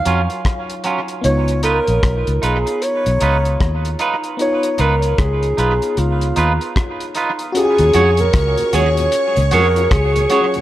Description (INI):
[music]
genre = lovers rock reggae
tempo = 76 BPM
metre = 4/4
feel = swing 61% on 16ths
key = unclear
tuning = A4 = 440 Hz
[part]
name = breathy alto saxophone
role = melody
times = 0.0-10.6 s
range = E#4 to E#5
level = -19 LUFS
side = right 1 dB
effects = tape echo
[part]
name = FM electric piano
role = accompaniment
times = 0.0-10.6 s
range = F#3 to C#5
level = -24 LUFS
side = left 3 dB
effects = chorus
[part]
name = twangy electric guitar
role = stabs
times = 0.1-10.5 s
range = F#3 to C#5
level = -21 LUFS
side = right 4 dB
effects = spring reverb, tape echo
[part]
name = vintage muted fingered electric bass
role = bass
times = 0.1-10.3 s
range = A#1 to E#2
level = -18 LUFS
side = equal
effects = none
[part]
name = cloth-damped thuddy drum kit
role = drums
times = 0.1-10.6 s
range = hi-hat, kick drum, rim click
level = -22 LUFS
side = equal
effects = tape echo
[part]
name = phased string machine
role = second line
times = 7.5-10.6 s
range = C#5 to C#6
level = -24 LUFS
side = right 1 dB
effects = ensemble chorus, phaser
[part]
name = mellow tonewheel organ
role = accompaniment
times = 7.8-10.6 s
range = D#2 to E#4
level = -27 LUFS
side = left 7 dB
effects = slow rotary speaker, tape echo
[sound]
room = light reverb, studio ambience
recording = none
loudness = -14 LUFS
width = side -14 dB against mid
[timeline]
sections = 0.0-7.5 A section; 7.5-10.6 B section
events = none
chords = 0.0 D#m9; 1.2 C#9; 7.5 D#m11